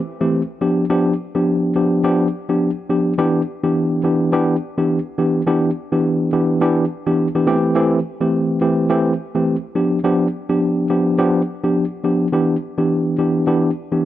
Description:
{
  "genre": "afrobeats",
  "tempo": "105 BPM",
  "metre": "4/4",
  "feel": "swing 58% on 16ths",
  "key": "unclear",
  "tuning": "A4 = 441 Hz",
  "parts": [
    { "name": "mellow tine electric piano", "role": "solo", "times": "0.2-14.1 s", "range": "E3 to G4", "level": "-16 LUFS", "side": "equal", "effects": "medium stereo tremolo" }
  ],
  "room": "little or no reverb",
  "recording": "dry, gritty hardware recording, cassette tape",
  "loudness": "-16 LUFS",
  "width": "side -13 dB against mid",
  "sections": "0.0-12.3 A section; 12.3-14.1 B section",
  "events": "none",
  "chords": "0.0 Am7; 0.6 G7; 3.2 Em7; 7.5 Am7; 9.8 G7; 12.3 Em7"
}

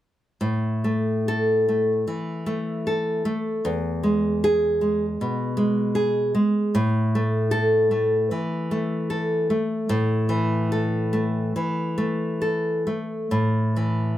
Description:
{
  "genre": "romantic piece for solo classical guitar",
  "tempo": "63-80 BPM",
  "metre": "4/4",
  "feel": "rubato",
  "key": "unclear",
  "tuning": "A4 = 441 Hz",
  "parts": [
    { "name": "nylon-string guitar", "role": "solo", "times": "0.4-14.2 s", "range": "E2 to A4", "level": "-21 LUFS", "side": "equal", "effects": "none" }
  ],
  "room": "moderate small room reverb, RT60 0.5 s",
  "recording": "none",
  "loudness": "-21 LUFS",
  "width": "side -13 dB against mid",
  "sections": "0.4-13.3 A section",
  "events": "none",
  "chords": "0.4 A5; 3.7 E; 6.8 A5"
}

